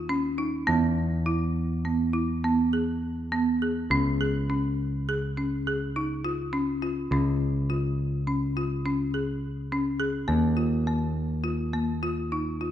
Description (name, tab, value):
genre	contemporary instrumental, chamber music in an uneven meter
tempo	207 BPM (eighths)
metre	11/8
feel	straight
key	unclear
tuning	A4 = 440 Hz
part	picked electric bass	bass	0.0-12.7 s	Db2 to E2	-29 LUFS	equal	none
part	folk marimba with medium hard mallets	arpeggios	0.1-12.7 s	Bb3 to G#4	-27 LUFS	equal	none
room	moderate concert hall reverb, RT60 2.3 s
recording	minimal, uncompressed stereo recording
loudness	-25 LUFS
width	side -11 dB against mid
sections	0.0-12.7 A section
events	none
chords	0.0 N.C.; 0.7 E; 3.9 Db; 10.3 Ebsus2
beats	0.10 0.39 | 0.68 0.98 1.27 1.56 1.85 2.14 2.43 2.73 3.02 3.32 3.61 | 3.91 4.20 4.50 4.79 5.08 5.37 5.67 5.96 6.25 6.54 6.83 | 7.12 7.40 7.69 7.98 8.27 8.56 8.85 9.14 9.43 9.72 10.01 | 10.29 10.58 10.87 11.15 11.44 11.73 12.02 12.31 12.61